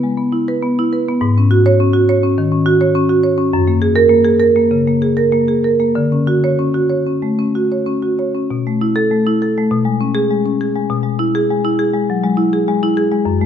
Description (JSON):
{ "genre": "classical, contemporary piece for solo marimba", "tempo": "94-104 BPM", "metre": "4/4", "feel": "rubato", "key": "unclear", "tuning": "A4 = 439 Hz", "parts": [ { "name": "marimba with medium hard mallets", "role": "solo", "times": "0.0-13.5 s", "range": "F#2 to C#5", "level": "-13 LUFS", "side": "equal", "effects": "none" } ], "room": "wet recital hall reverb, RT60 1.3 s", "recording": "none", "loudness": "-13 LUFS", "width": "side -8 dB against mid", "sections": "0.0-13.5 A section", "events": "none", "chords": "0.0 C#m7 (rootless); 1.2 G#7sus4; 3.5 F#add9; 6.0 Dmaj7; 8.5 B7sus4; 9.7 G#madd11/B; 10.9 E/B" }